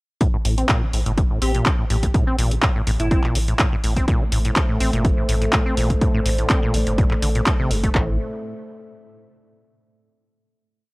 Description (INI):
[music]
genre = acid house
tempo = 124 BPM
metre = 4/4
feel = straight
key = A phrygian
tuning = A4 = 440 Hz
[part]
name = acid bass, saw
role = riff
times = 0.2-8.2 s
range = G2 to C4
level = -25 LUFS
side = equal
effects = tube saturation, vintage 12-bit sampler grit, sidechain pumping, analog delay
[part]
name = punchy analog drum machine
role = drums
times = 0.2-8.1 s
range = handclaps, kick drum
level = -20 LUFS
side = equal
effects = none
[part]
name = punchy analog drum machine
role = drums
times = 0.2-7.9 s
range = handclaps, hi-hat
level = -25 LUFS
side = equal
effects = none
[part]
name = warm sub bass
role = bass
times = 0.5-8.2 s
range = G1 to A1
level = -22 LUFS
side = equal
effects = tube saturation, sidechain pumping
[part]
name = airy dreamy lead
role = melody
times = 1.4-3.2 s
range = E4 to G4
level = -30 LUFS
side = equal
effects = chorus, analog delay
[part]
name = dark analog pad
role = sustained chords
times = 4.1-8.2 s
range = A3 to E5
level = -27 LUFS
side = equal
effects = chorus, sidechain pumping
[sound]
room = little or no reverb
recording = dry, gritty hardware recording, transformer saturation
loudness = -17 LUFS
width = side -24 dB against mid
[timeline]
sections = 0.2-8.0 groove; 8.0-9.9 final chord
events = none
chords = 0.2 Am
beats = | 0.21 0.69 1.18 1.66 | 2.14 2.63 3.11 3.60 | 4.08 4.56 5.05 5.53 | 6.01 6.50 6.98 7.47 | 7.95